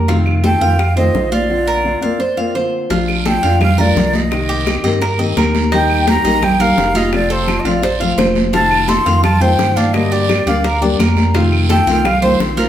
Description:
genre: latin, Cuban son and guajira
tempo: 171 BPM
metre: 4/4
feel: straight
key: Bb major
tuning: A4 = 440 Hz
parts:
  - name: nylon-string guitar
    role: accompaniment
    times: 0.0-12.7 s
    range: C3 to G4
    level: -19 LUFS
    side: left 3 dB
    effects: none
  - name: Cuban tres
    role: arpeggios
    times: 0.0-12.7 s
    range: D4 to F5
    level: -20 LUFS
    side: right 2 dB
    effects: none
  - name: sub bass with octave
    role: bass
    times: 0.0-12.7 s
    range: F1 to G2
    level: -18 LUFS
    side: equal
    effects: none
  - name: bongos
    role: percussion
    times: 0.1-12.7 s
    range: none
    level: -24 LUFS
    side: left 4 dB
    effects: none
  - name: congas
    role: percussion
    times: 0.1-12.7 s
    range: none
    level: -21 LUFS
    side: right 1 dB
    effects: none
  - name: claves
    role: percussion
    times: 0.3-1.0, 3.1-12.2 s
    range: none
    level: -27 LUFS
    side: right 3 dB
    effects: none
  - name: breathy jazz flute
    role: melody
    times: 0.5-12.7 s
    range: Bb4 to C6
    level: -17 LUFS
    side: equal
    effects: plate reverb
  - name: guiro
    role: percussion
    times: 2.9-12.7 s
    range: none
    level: -27 LUFS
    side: right 5 dB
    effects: none
room: wet studio reverb, RT60 0.8 s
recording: heard from further back in the room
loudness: -12 LUFS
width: side -11 dB against mid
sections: 0.0-2.9 A section; 2.9-12.7 A section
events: break 1.5-2.9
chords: 0.1 F7; 1.5 Bbadd9; 2.9 Bbmaj7; 4.3 Cm7; 5.7 Eb; 7.1 F; 8.5 F7; 9.9 Gm; 11.3 F7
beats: | 0.09 0.44 0.79 1.14 | 1.50 1.85 2.20 2.55 | 2.90 3.26 3.61 3.96 | 4.31 4.67 5.02 5.37 | 5.72 6.07 6.42 6.78 | 7.13 7.48 7.83 8.18 | 8.53 8.89 9.24 9.59 | 9.94 10.29 10.64 10.99 | 11.35 11.70 12.05 12.40

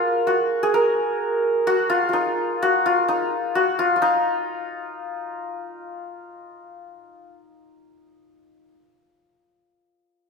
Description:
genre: indian classical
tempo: 129 BPM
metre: 7/4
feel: straight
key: Eb raga darbari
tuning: A4 = 440 Hz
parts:
  - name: santur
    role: solo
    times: 0.0-8.7 s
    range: Eb4 to Bb4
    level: -20 LUFS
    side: left 1 dB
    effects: none
room: wet recital hall reverb, RT60 1.4 s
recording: none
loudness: -19 LUFS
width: side -4 dB against mid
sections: 0.0-4.0 A section; 4.0-7.3 B section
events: none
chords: none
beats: 0.26 | 0.73 1.20 1.67 2.14 2.61 3.08 3.55 | 4.01 4.48 4.94 5.41 5.87 6.34 6.80

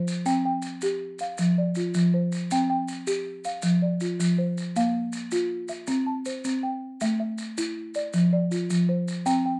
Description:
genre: southern african traditional, mbira-style interlocking cycle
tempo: 107 BPM (dotted quarters)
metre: 12/8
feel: straight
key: C mixolydian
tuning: A4 = 441 Hz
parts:
  - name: folk marimba with soft mallets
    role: arpeggios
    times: 0.0-9.6 s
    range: F3 to A5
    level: -26 LUFS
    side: equal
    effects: none
  - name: maracas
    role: percussion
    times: 0.1-9.4 s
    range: none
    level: -40 LUFS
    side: equal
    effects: none
room: light reverb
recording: worn, warbling old tape, cassette tape, warbly pitch drift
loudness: -26 LUFS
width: mono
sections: 0.3-9.6 A section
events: none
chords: 0.3 C5; 1.4 F5; 2.5 C5; 3.6 F5; 4.8 Bb5; 5.9 C; 7.0 A5; 8.1 F5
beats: | 0.27 0.83 1.39 1.95 | 2.51 3.07 3.64 4.20 | 4.76 5.33 5.89 6.45 | 7.01 7.58 8.14 8.70 | 9.26

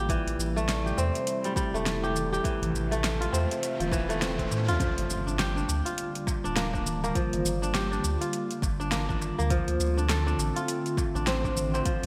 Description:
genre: organic downtempo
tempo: 102 BPM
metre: 4/4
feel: swing 60% on 16ths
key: G dorian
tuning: A4 = 440 Hz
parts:
  - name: warbly tape-like pad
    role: sustained chords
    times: 0.0-12.1 s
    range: C3 to E5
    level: -38 LUFS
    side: equal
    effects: chorus, built-in reverb, sidechain pumping
  - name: kora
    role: arpeggios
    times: 0.0-12.1 s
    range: E3 to A4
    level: -32 LUFS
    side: equal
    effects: digital delay
  - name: warm sub bass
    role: bass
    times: 0.0-12.1 s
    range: D1 to A2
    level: -33 LUFS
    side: equal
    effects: none
  - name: deep house drum kit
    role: drums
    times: 0.1-12.1 s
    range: hi-hat, shaker, snare drum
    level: -35 LUFS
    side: equal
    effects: studio reverb, gated reverb
  - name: electronic kick drum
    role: drums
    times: 0.1-12.0 s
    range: none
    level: -33 LUFS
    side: equal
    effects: studio reverb
  - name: riser and impact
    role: sound effects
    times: 2.3-7.2 s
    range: none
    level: -42 LUFS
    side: equal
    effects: none
  - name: darbuka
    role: percussion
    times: 1.0-11.8 s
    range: none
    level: -41 LUFS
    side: equal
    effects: none
room: moderate lush hall reverb, RT60 2.2 s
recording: bright 1980s-style digital production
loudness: -28 LUFS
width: mono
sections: 0.0-4.8 A section; 4.8-12.1 B section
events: riser 2.5-4.8; impact 4.8-7.2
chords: 0.1 Am7; 2.4 Fmaj7/A; 4.8 Gm7; 9.5 Dm7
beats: | 0.10 0.68 1.27 1.86 | 2.45 3.04 3.62 4.21 | 4.80 5.39 5.98 6.57 | 7.15 7.74 8.33 8.92 | 9.51 10.10 10.68 11.27 | 11.86

